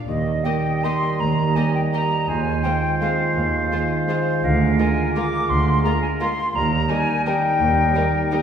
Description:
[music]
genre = classical, orchestral ballroom waltz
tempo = 154-185 BPM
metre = 3/4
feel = rubato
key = Eb major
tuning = A4 = 439 Hz
[part]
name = concert harp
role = arpeggios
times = 0.0-8.4 s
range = D3 to Eb5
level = -26 LUFS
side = equal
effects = none
[part]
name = warm symphonic cello section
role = bass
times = 0.0-7.9 s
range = D2 to Eb2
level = -28 LUFS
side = right 3 dB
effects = none
[part]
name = clear oboe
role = second line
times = 0.1-8.4 s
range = Bb4 to Eb5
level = -29 LUFS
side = right 2 dB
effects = none
[part]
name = silver concert flute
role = second line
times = 0.1-8.4 s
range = Eb5 to D6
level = -23 LUFS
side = left 2 dB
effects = none
[part]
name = warm clarinet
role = second line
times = 0.1-8.4 s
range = Eb4 to Bb4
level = -32 LUFS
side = right 3 dB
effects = none
[part]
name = dark bassoon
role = accompaniment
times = 0.1-8.4 s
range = G3 to Ab3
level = -30 LUFS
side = right 2 dB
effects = none
[part]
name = warm studio double bass section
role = bass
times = 0.1-7.9 s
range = D2 to Eb2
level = -25 LUFS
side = right 2 dB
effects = none
[part]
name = dark French horn section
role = sustained chords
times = 0.4-8.4 s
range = G3 to C4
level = -37 LUFS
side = left 1 dB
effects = none
[part]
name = dark studio violin section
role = melody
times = 0.5-8.4 s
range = Bb4 to Eb5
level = -37 LUFS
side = left 2 dB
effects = none
[part]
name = warm symphonic violin section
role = second line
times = 0.5-8.4 s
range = Eb4 to G4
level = -36 LUFS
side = left 2 dB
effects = none
[part]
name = dark symphonic viola section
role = accompaniment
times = 0.5-8.4 s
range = G3 to Bb3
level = -33 LUFS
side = right 1 dB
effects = none
[sound]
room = wet recital hall reverb, RT60 1.4 s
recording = recorded in a church or concert hall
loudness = -18 LUFS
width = side -8 dB against mid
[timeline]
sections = 0.1-8.4 A section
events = none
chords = 0.1 Eb; 2.3 Fm7/Eb; 4.4 Bb7/D; 6.5 Eb

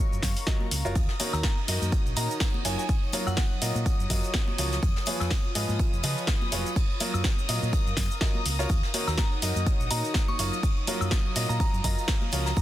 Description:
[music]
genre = piano house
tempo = 124 BPM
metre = 4/4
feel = swing 56% on 16ths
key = F# major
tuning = A4 = 440 Hz
[part]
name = warm studio string section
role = sustained chords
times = 0.0-12.6 s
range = C#6 to D#6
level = -38 LUFS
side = left 5 dB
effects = sidechain pumping
[part]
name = bright upright piano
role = riff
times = 0.0-12.5 s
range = D#3 to D#5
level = -34 LUFS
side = right 1 dB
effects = sidechain pumping
[part]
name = airy breathy pad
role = texture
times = 0.0-12.6 s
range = F#3 to B5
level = -40 LUFS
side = equal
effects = chorus, sidechain pumping
[part]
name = hollow-body short-scale fingered electric bass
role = bass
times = 0.1-12.6 s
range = E#1 to C#3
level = -30 LUFS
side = equal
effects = sidechain pumping
[part]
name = punchy analog drum machine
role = drums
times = 0.1-12.6 s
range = cabasa, hi-hat, snare drum, woodblock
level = -32 LUFS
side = equal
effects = soft clipping on snare
[part]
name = tambourine and congas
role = percussion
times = 0.1-12.6 s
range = none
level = -41 LUFS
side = left 5 dB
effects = none
[part]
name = electronic kick drum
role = drums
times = 0.2-12.6 s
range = none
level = -26 LUFS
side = equal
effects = none
[part]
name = jazz brush drum kit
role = drums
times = 0.9-12.6 s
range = ride cymbal, snare drum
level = -37 LUFS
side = right 3 dB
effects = sidechain pumping on cymbals, high-pass filter on cymbals, high-pass filter on snare, high-pass filter on room
[part]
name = glassy synth bell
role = melody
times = 1.3-3.9, 9.1-12.6 s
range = F#5 to C#6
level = -37 LUFS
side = right 1 dB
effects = chorus, dub echo
[sound]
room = little or no reverb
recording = dense, heavily limited modern master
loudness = -24 LUFS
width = side -13 dB against mid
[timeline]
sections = 0.0-12.6 A section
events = none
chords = 0.0 F#maj7; 1.0 D#m7; 2.6 F#maj7; 4.8 C#7/E#; 6.8 F#maj7; 8.7 D#m7; 10.4 F#maj7

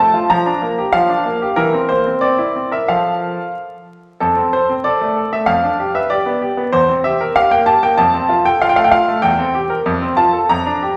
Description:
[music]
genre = classical-period piano sonatina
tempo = 95 BPM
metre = 2/4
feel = straight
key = F major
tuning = A4 = 440 Hz
[part]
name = bright grand piano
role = solo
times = 0.0-11.0 s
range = E2 to Bb5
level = -16 LUFS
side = equal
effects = none
[sound]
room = wet recital hall reverb, RT60 1.7 s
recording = vinyl crackle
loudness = -16 LUFS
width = mono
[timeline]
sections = 0.0-4.2 A section; 4.2-11.0 B section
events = none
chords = 0.3 Gm7/F; 1.6 C7/E; 2.2 C7; 2.9 F; 4.2 F (rootless); 5.5 G7/F; 6.7 C7/E; 8.0 F; 9.2 C7/E; 9.9 F

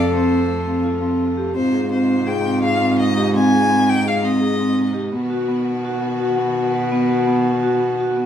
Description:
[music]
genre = contemporary instrumental, chamber music in an uneven meter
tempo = 168 BPM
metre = 5/4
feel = straight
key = unclear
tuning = A4 = 440 Hz
[part]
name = clear violin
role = melody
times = 0.0-5.0 s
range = C5 to Ab5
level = -22 LUFS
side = left 2 dB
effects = none
[part]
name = warm French horn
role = second line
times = 0.0-8.3 s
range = F4 to A4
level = -24 LUFS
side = left 3 dB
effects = none
[part]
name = bright studio string section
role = sustained chords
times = 0.0-8.3 s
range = C3 to F#4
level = -30 LUFS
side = equal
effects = none
[part]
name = vibraphone with medium hard mallets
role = arpeggios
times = 0.0-8.3 s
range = B3 to A4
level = -19 LUFS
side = equal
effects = none
[part]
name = rich cello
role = bass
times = 0.0-8.3 s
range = F2 to B2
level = -23 LUFS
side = right 3 dB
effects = none
[sound]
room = wet studio reverb, RT60 0.9 s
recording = heard from further back in the room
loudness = -16 LUFS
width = side -9 dB against mid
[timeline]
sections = 0.0-8.3 A section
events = none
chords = 0.0 F; 1.6 Ab; 5.1 B

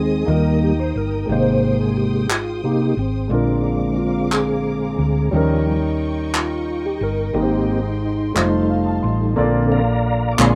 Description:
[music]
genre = slow gospel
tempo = 59 BPM (dotted quarters)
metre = 6/8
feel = straight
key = Ab major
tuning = A4 = 441 Hz
[part]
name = warm grand piano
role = accompaniment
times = 0.0-10.6 s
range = Ab2 to C6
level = -25 LUFS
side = equal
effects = none
[part]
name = muted studio string section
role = sustained chords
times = 0.0-9.4 s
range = Eb5 to Eb6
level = -37 LUFS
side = equal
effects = none
[part]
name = percussive tonewheel organ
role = sustained chords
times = 0.0-10.6 s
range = C3 to D6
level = -22 LUFS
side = equal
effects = fast rotary speaker, chorus vibrato
[part]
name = hollow-body short-scale fingered electric bass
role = bass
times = 0.0-10.6 s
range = F1 to Eb2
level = -25 LUFS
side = equal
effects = none
[part]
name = group handclap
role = percussion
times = 2.3-10.6 s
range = none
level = -22 LUFS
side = equal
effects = none
[sound]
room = light reverb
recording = rough home demo mix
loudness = -19 LUFS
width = mono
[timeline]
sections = 0.0-9.4 A section; 9.4-10.6 B section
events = tonewheel organ solo 0.0-9.4, 9.4-10.6; grand piano fill 8.4-9.4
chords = 0.3 Eb; 1.3 Abmaj7; 3.3 Bb7; 5.3 Eb7; 7.4 Abmaj7; 8.4 F7; 9.4 Bbmaj7

